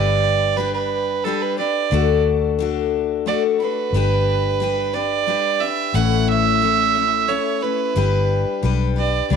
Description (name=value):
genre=honky-tonk and classic country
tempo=89 BPM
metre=3/4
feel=straight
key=unclear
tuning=A4 = 444 Hz
part: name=rich fiddle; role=melody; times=0.0-9.4 s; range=A4 to F#5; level=-20 LUFS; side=right 9 dB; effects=none
part: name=picked steel-string acoustic guitar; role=accompaniment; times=0.0-9.4 s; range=A2 to C#5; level=-22 LUFS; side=left 12 dB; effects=none
part: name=vintage muted fingered electric bass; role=bass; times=0.0-9.4 s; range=G1 to D2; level=-22 LUFS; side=left 1 dB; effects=none
room=wet spring reverb, RT60 2.3 s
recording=1960s-style stereo with parts hard left and right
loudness=-17 LUFS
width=side -6 dB against mid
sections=0.0-9.4 A section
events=none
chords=0.0 G; 1.9 D; 3.9 G; 5.9 A; 8.0 G